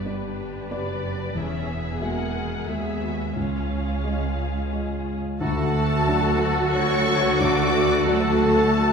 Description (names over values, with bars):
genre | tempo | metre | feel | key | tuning
cinematic, emotional film score for orchestra | 91 BPM | 3/4 | rubato | unclear | A4 = 440 Hz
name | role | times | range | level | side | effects
warm studio violin section | second line | 0.0-8.9 s | F#4 to F#5 | -30 LUFS | left 3 dB | none
felt-muted upright piano | accompaniment | 0.0-8.9 s | C#2 to E5 | -28 LUFS | equal | none
warm studio viola section | accompaniment | 0.0-8.9 s | G#3 to A#4 | -29 LUFS | equal | none
warm studio cello section | bass | 0.0-8.9 s | C#2 to G2 | -30 LUFS | right 2 dB | none
warm studio double bass section | bass | 0.0-8.9 s | E1 to D#2 | -30 LUFS | right 2 dB | none
rich studio violin section | melody | 5.4-8.9 s | A5 to D6 | -27 LUFS | left 2 dB | none
clear oboe | second line | 5.4-8.9 s | A4 | -31 LUFS | right 1 dB | none
large flute ensemble | second line | 5.4-8.9 s | A4 to D5 | -26 LUFS | equal | none
mellow clarinet | second line | 5.4-8.9 s | F#4 | -31 LUFS | equal | none
mellow French horn section | sustained chords | 5.4-8.9 s | A3 to C#5 | -26 LUFS | equal | none
room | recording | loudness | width
wet scoring stage reverb, RT60 1.6 s | heard from further back in the room | -21 LUFS | side -6 dB against mid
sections
0.0-5.4 A section; 5.4-8.9 B section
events
none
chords
0.0 G; 1.4 Eadd9; 3.4 C#add9; 5.4 D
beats
0.06 0.72 | 1.36 2.02 2.68 | 3.36 4.05 4.73 | 5.41 6.07 6.74 | 7.40 8.06 8.72